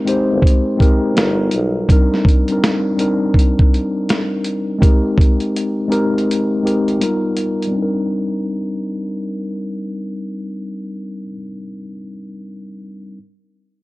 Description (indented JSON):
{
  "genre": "lo-fi hip hop",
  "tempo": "82 BPM",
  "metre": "4/4",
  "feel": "swing 65% on 16ths",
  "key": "C minor",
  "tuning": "A4 = 440 Hz",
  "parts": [
    { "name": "mellow tine electric piano", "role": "accompaniment", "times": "0.0-13.2 s", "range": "G3 to C5", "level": "-18 LUFS", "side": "left 1 dB", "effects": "medium stereo tremolo, cassette tape, low-pass filter" },
    { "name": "dusty soul sampler-style drum kit", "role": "drums", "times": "0.1-7.7 s", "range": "hi-hat, kick drum, snare drum", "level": "-14 LUFS", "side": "equal", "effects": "none" },
    { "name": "warm tuba", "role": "bass", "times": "0.3-1.9 s", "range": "G1 to B1", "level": "-21 LUFS", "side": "equal", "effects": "none" }
  ],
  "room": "light reverb",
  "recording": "cassette tape",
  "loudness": "-14 LUFS",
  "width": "side -20 dB against mid",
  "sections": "0.0-7.7 A section; 7.7-10.7 B section",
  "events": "filter sweep on tine electric piano 0.0-7.7; break 6.3-7.7",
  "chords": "0.0 Abmaj7; 1.2 G7alt; 1.9 Cm7; 4.8 Abmaj7; 7.0 G7alt; 7.7 Cm7",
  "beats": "0.43 1.16 | 1.89 2.62 3.35 4.09 | 4.82 5.55 6.28 7.01 | 7.75 8.48 9.21 9.94"
}